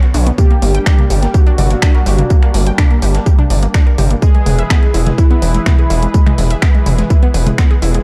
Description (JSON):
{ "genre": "melodic techno", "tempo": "125 BPM", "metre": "4/4", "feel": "straight", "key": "unclear", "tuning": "A4 = 440 Hz", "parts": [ { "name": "lush unison pad", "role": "sustained chords", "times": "0.0-8.0 s", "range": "D3 to C#5", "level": "-27 LUFS", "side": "equal", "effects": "chorus, phaser, sidechain pumping" }, { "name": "unison pluck", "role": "arpeggios", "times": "0.0-8.0 s", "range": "G#3 to G5", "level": "-24 LUFS", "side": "equal", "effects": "sidechain pumping, dub echo" }, { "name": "house drum kit", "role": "drums", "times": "0.0-8.0 s", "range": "finger snaps, hi-hat, toms", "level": "-22 LUFS", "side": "equal", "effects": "overdrive, sidechain pumping on toms, sidechain pumping on hats" }, { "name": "gritty driven synth bass", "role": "bass", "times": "0.1-8.0 s", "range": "E1 to B1", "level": "-16 LUFS", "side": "equal", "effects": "sidechain pumping" }, { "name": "breakbeat sampler-style drum kit", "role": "drums", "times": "0.1-7.9 s", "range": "hi-hat, snare drum, tambourine", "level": "-34 LUFS", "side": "equal", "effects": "none" }, { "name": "fat analog lead", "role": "melody", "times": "0.4-6.5 s", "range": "E4 to G#4", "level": "-24 LUFS", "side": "equal", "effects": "subtle chorus, sidechain pumping, dub echo" }, { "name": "electronic kick drum", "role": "drums", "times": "0.4-7.7 s", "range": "none", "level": "-12 LUFS", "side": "equal", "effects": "overdrive" } ], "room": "little or no reverb", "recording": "dark, warm production", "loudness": "-12 LUFS", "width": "mono", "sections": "0.0-8.0 A section", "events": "none", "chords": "0.4 Gm; 4.2 E" }